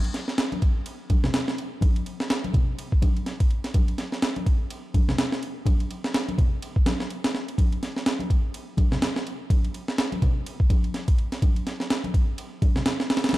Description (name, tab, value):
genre	breakbeat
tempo	125 BPM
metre	4/4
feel	swing 58% on 16ths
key	none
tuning	none
part	breakbeat sampler-style drum kit	drums	0.0-13.4 s	kick drum, ride cymbal, snare drum	-22 LUFS	equal	none
part	congas	percussion	0.5-13.4 s	none	-32 LUFS	left 1 dB	none
room	light reverb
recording	dark, warm production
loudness	-22 LUFS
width	side -17 dB against mid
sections	0.0-13.4 A section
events	none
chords	none